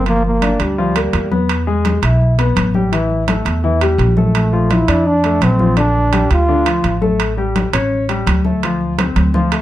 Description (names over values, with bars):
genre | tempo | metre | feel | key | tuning
latin, salsa | 168 BPM | 4/4 | straight | unclear | A4 = 435 Hz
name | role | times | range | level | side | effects
clear trombone | melody | 0.0-1.3, 4.4-7.0 s | G3 to F4 | -17 LUFS | right 1 dB | none
clear grand piano | accompaniment | 0.0-9.6 s | D3 to E5 | -19 LUFS | left 3 dB | none
upright bass | bass | 0.0-9.6 s | G1 to F2 | -17 LUFS | right 1 dB | none
congas | percussion | 0.1-9.4 s | none | -20 LUFS | left 2 dB | none
timbales | percussion | 0.1-9.6 s | none | -22 LUFS | right 8 dB | none
room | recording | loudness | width
moderate studio reverb, RT60 0.5 s | dark, warm production | -13 LUFS | side -13 dB against mid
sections
0.0-9.6 A section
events
drum fill 9.2-9.6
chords
0.1 Gm7; 1.5 E; 2.9 A5; 4.3 Bbmaj9; 5.8 Gm9/Bb; 7.2 A7; 8.6 Dm7